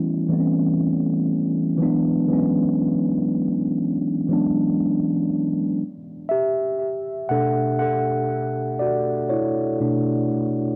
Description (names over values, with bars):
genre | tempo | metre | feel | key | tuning
R&B | 60 BPM | 4/4 | swing 58% on 16ths | B minor | A4 = 440 Hz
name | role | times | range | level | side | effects
mellow tine electric piano | solo | 0.0-10.8 s | B2 to F#5 | -22 LUFS | equal | cassette tape, analog delay
room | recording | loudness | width
wet booth ambience, RT60 0.2 s | home recording on cassette | -22 LUFS | mono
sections
0.0-5.8 A section; 5.8-10.8 B section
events
tine electric piano solo 5.8-10.8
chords
0.0 A7; 1.8 E7; 5.8 Bm9